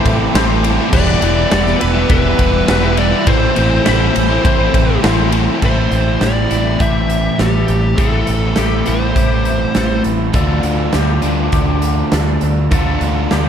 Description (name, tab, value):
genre	rock, shoegaze and dream pop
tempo	102 BPM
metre	4/4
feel	straight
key	A minor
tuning	A4 = 443 Hz
part	dark analog pad	sustained chords	0.0-5.6 s	A4 to E6	-26 LUFS	right 1 dB	chorus
part	twangy electric guitar	arpeggios	0.0-13.5 s	G4 to B5	-26 LUFS	left 10 dB	ensemble chorus, digital delay
part	overdriven electric guitar	riff	0.0-13.5 s	E2 to F4	-19 LUFS	right 10 dB	reverse reverb
part	overdriven semi-hollow guitar	riff	0.0-13.5 s	A2 to F4	-19 LUFS	left 9 dB	ensemble chorus
part	deep dub picked electric bass	bass	0.1-13.5 s	E1 to D2	-18 LUFS	equal	none
part	big rock drum kit	drums	0.1-13.5 s	crash cymbal, hi-hat, kick drum, ride cymbal, snare drum	-18 LUFS	equal	none
part	fuzz lead guitar	melody	0.9-10.0 s	G4 to E5	-20 LUFS	left 2 dB	distortion, digital delay
room	light reverb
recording	none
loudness	-12 LUFS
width	side -8 dB against mid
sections	0.0-5.6 A section; 5.6-13.5 B section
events	none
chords	0.0 Am7; 0.9 Em7; 3.3 Am7; 10.4 Dm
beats	0.35 | 0.93 1.52 2.10 2.69 | 3.27 3.86 4.45 5.04 | 5.62 6.21 6.80 7.39 | 7.99 8.58 9.17 9.76 | 10.35 10.95 11.54 12.13 | 12.72 13.32